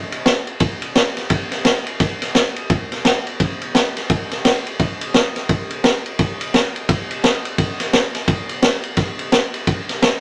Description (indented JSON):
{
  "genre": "rock",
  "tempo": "172 BPM",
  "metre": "4/4",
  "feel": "swing 62% on 8ths",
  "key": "none",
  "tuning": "none",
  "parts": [
    { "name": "vintage drum kit", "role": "drums", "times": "0.1-10.1 s", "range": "kick drum, ride cymbal, snare drum", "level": "-19 LUFS", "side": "equal", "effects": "none" }
  ],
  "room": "moderate studio reverb, RT60 0.5 s",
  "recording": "none",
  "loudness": "-19 LUFS",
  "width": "mono",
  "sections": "0.0-4.8 A section; 4.8-10.2 B section",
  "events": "none",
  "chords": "none"
}